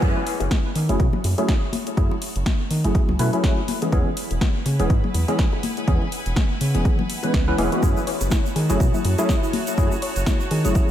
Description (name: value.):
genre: deep house.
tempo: 123 BPM.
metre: 4/4.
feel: swing 57% on 16ths.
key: F# minor.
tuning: A4 = 440 Hz.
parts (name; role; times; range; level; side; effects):
barky tine electric piano; stabs; 0.0-10.9 s; E3 to B4; -25 LUFS; equal; overdrive, ensemble chorus, sidechain pumping, low-pass filter, ping-pong delay.
round analog bass; bass; 0.0-10.7 s; E1 to D#3; -22 LUFS; equal; sidechain pumping.
electronic kick drum; drums; 0.0-10.9 s; none; -21 LUFS; equal; overdrive, studio reverb.
house drum kit; drums; 0.0-10.9 s; hi-hat, snare drum; -30 LUFS; equal; studio reverb.
bongos and congas; percussion; 0.0-10.9 s; none; -32 LUFS; left 5 dB; none.
clear studio string section; texture; 0.0-10.9 s; E4 to A5; -35 LUFS; equal; sidechain pumping.
soft round pluck; arpeggios; 7.8-10.6 s; E4 to C#5; -32 LUFS; left 2 dB; chorus, sidechain pumping, tape echo.
egg shaker; percussion; 7.8-10.9 s; none; -36 LUFS; right 6 dB; none.
room: light reverb, studio reverb.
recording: none.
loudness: -19 LUFS.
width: side -11 dB against mid.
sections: 0.0-10.9 A section.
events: fade-in on string section 0.0-10.9.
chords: 0.0 F#m9; 3.7 E6; 7.8 F#m9.